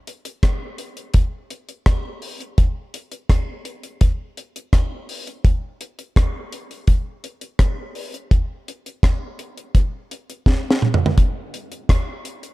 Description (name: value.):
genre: reggae.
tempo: 84 BPM.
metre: 4/4.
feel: straight.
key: none.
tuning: none.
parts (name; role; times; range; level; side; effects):
deep reggae drum kit; drums; 0.1-12.5 s; hi-hat, kick drum, rim click, snare drum, toms; -17 LUFS; equal; none.
room: little or no reverb.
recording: dark, warm production.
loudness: -18 LUFS.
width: side -19 dB against mid.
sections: 0.0-11.2 A section; 11.2-12.5 B section.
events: drum fill 10.5-11.2.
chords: none.